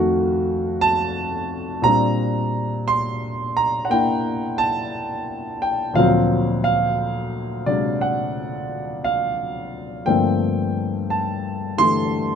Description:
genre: solo jazz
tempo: 58 BPM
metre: 4/4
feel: swing 67% on 8ths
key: unclear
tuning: A4 = 440 Hz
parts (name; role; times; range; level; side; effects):
- warm grand piano; solo; 0.0-12.4 s; D2 to C6; -19 LUFS; equal; none
room: light reverb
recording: minimal, uncompressed stereo recording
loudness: -19 LUFS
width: side -7 dB against mid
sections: 0.0-12.4 A section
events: none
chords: 0.0 F7b9; 1.8 Bb69; 6.0 D7alt; 10.1 Gm11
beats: 0.80 | 1.83 2.86 3.89 4.92 | 5.95 6.98 8.01 9.04 | 10.06 11.09 12.12

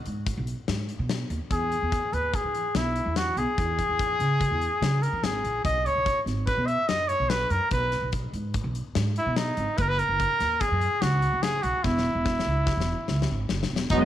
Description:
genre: progressive instrumental, band music in an uneven meter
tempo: 145 BPM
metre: 5/4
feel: straight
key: E lydian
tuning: A4 = 440 Hz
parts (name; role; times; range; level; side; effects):
- upright bass; bass; 0.1-14.1 s; E1 to E3; -28 LUFS; right 1 dB; none
- huge arena drum kit; drums; 0.1-14.0 s; hi-hat, kick drum, snare drum; -31 LUFS; left 3 dB; none
- clear trumpet; melody; 1.5-14.0 s; D#4 to E5; -26 LUFS; equal; none
- lush unison pad; accompaniment; 13.9-14.1 s; F#3 to D#5; -20 LUFS; right 1 dB; chorus
room: light reverb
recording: 1960s-style stereo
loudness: -24 LUFS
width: side -12 dB against mid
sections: 0.0-13.9 A section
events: drum fill 11.8-13.9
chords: 0.0 N.C.; 1.5 E; 5.6 B; 9.8 F#5; 11.8 N.C.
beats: 0.27 0.68 1.09 | 1.51 1.92 2.33 2.75 3.16 | 3.58 3.99 4.41 4.82 5.23 | 5.65 6.06 6.47 6.89 7.30 | 7.72 8.13 8.54 8.96 9.37 | 9.78 10.19 10.61 11.02 11.43 | 11.84 12.26 12.67 13.08 13.49 | 13.91

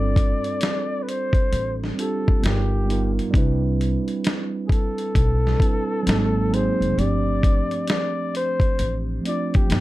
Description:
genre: lo-fi hip hop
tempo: 66 BPM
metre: 4/4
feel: swing 62% on 16ths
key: unclear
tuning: A4 = 440 Hz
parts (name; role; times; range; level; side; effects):
- breathy flugelhorn; melody; 0.0-9.8 s; G4 to D5; -26 LUFS; left 2 dB; low-pass filter
- mellow tine electric piano; accompaniment; 0.0-9.8 s; F3 to B4; -25 LUFS; right 3 dB; cassette tape, low-pass filter
- upright bass; bass; 0.0-9.8 s; F1 to C2; -24 LUFS; equal; none
- dusty soul sampler-style drum kit; drums; 0.2-9.8 s; hi-hat, kick drum, snare drum; -21 LUFS; equal; none
room: light reverb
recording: dark, warm production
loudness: -19 LUFS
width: side -16 dB against mid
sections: 0.0-9.8 A section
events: none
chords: 0.0 G9sus4; 2.4 G7alt; 3.3 Cmaj9; 6.1 Ab9; 7.0 G9sus4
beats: 0.61 1.52 2.43 | 3.34 4.25 5.16 6.06 | 6.97 7.88 8.79 9.70

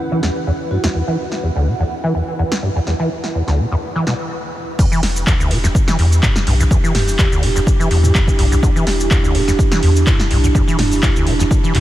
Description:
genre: acid house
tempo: 125 BPM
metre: 4/4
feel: swing 53% on 16ths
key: unclear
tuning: A4 = 441 Hz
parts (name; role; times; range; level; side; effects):
- dark analog pad; sustained chords; 0.0-11.8 s; E3 to G4; -23 LUFS; right 4 dB; chorus, sidechain pumping
- ethereal airy pad; texture; 0.0-4.3 s; E4 to F#5; -28 LUFS; right 2 dB; ensemble chorus, built-in reverb, phaser, sidechain pumping
- deep acid bass; riff; 0.1-11.8 s; D2 to E3; -19 LUFS; equal; tube saturation, analog chorus, sidechain pumping, analog delay
- electro analog drum machine; drums; 0.2-11.8 s; crash cymbal, handclaps, hi-hat, shaker, snare drum, toms; -22 LUFS; equal; none
- vibraphone with hard mallets; melody; 0.7-0.9, 6.9-7.1 s; F#4 to G4; -33 LUFS; left 1 dB; none
- electronic kick drum; drums; 4.8-11.6 s; none; -16 LUFS; equal; none
- saturated sub bass; bass; 5.0-11.8 s; E1 to E2; -16 LUFS; equal; tube saturation, sidechain pumping
room: light reverb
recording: none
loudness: -13 LUFS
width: side -14 dB against mid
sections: 0.0-4.8 A section; 4.8-11.8 B section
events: filter sweep on acid bass 0.0-4.8; break 4.3-4.8; drop 4.8-11.8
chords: 0.0 E5; 4.8 Em7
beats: 0.47 | 0.95 1.43 1.91 2.39 | 2.87 3.35 3.83 4.31 | 4.79 5.27 5.75 6.23 | 6.71 7.19 7.67 8.15 | 8.63 9.11 9.59 10.07 | 10.55 11.03 11.51

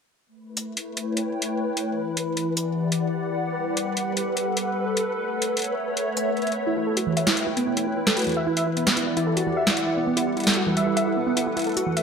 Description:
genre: IDM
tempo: 150 BPM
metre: 4/4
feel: straight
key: E dorian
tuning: A4 = 439 Hz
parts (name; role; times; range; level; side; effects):
- hollow soft pad; sustained chords; 0.3-12.0 s; E3 to G5; -26 LUFS; left 1 dB; ensemble chorus
- flickering grainy texture; texture; 0.9-12.0 s; B4; -34 LUFS; equal; built-in reverb, analog chorus
- booming analog drum machine; drums; 0.6-12.0 s; hi-hat, snare drum; -25 LUFS; equal; gated reverb, ping-pong delay
- warbly dusty pluck; arpeggios; 6.7-12.0 s; E3 to E5; -24 LUFS; right 2 dB; chorus, ping-pong delay
room: wet plate reverb, RT60 1.6 s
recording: bright 1980s-style digital production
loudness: -22 LUFS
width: side -6 dB against mid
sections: 0.3-12.0 A section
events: filter sweep on analog synth pad 0.3-12.0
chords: 0.3 A9; 1.9 Em9; 3.5 Gmaj9; 5.1 F#m7/A; 6.7 A9; 8.3 Em9; 11.5 F#m7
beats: | 0.27 0.67 1.07 1.47 | 1.87 2.27 2.67 3.07 | 3.47 3.87 4.27 4.67 | 5.07 5.47 5.87 6.27 | 6.67 7.07 7.47 7.87 | 8.27 8.67 9.07 9.47 | 9.87 10.27 10.67 11.07 | 11.47 11.87

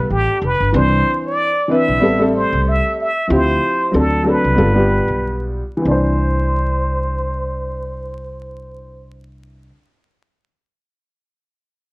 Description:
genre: hip hop, jazz-hop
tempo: 94 BPM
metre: 4/4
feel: swing 57% on 16ths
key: C major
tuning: A4 = 440 Hz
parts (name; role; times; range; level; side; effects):
- trumpet with plunger mute; melody; 0.0-9.2 s; G4 to E5; -19 LUFS; equal; low-pass filter, slapback echo
- clear upright piano; accompaniment; 0.0-9.7 s; E3 to C5; -18 LUFS; left 1 dB; low-pass filter
- upright bass; bass; 0.0-9.7 s; F1 to D2; -20 LUFS; equal; none
room: moderate studio reverb, RT60 0.6 s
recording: worn, warbling old tape, cassette tape, vinyl crackle, warbly pitch drift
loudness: -14 LUFS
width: side -24 dB against mid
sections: 0.7-5.8 A section; 5.8-8.4 B section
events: filter sweep 0.7-5.8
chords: 0.0 G9; 0.7 Cmaj9; 2.0 Am7; 3.3 Dm11; 3.9 D7; 4.6 G7; 5.8 Cadd9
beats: 0.10 | 0.74 1.38 2.02 2.66 | 3.29 3.93 4.57 5.21 | 5.85 6.49 7.12 7.76

